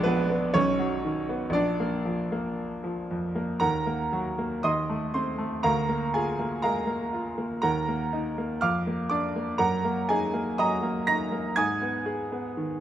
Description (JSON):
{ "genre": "classical, romantic character piece for solo piano", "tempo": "60 BPM", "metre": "2/4", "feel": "rubato", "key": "Eb minor", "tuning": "A4 = 440 Hz", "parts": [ { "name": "bright grand piano", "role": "solo", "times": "0.0-12.8 s", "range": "Bb1 to Bb6", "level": "-25 LUFS", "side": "right 1 dB", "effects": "none" } ], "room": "light reverb", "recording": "close, detailed microphones", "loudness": "-25 LUFS", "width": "side -11 dB against mid", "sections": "0.0-3.6 A section; 3.6-12.8 B section", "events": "none", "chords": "0.0 Bb7b9; 0.5 B; 1.5 Bb; 3.6 Ebm; 4.6 Adim/Eb; 5.6 Bb7/D; 7.6 Ebm; 8.6 Bb/F; 9.6 Ebm/Gb; 11.6 Abm" }